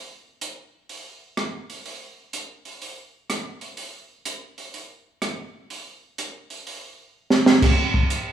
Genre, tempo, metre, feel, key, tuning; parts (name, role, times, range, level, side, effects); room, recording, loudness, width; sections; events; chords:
jazz; 125 BPM; 4/4; swing 66% on 8ths
compact cocktail drum kit; drums; 0.4-8.2 s; crash cymbal, hi-hat, kick drum, rim click, snare drum; -22 LUFS; right 1 dB
moderate recital hall reverb, RT60 1.5 s; recorded in a church or concert hall, studio reverb; -21 LUFS; side -10 dB against mid
0.0-8.3 A section
drum fill 7.1-7.6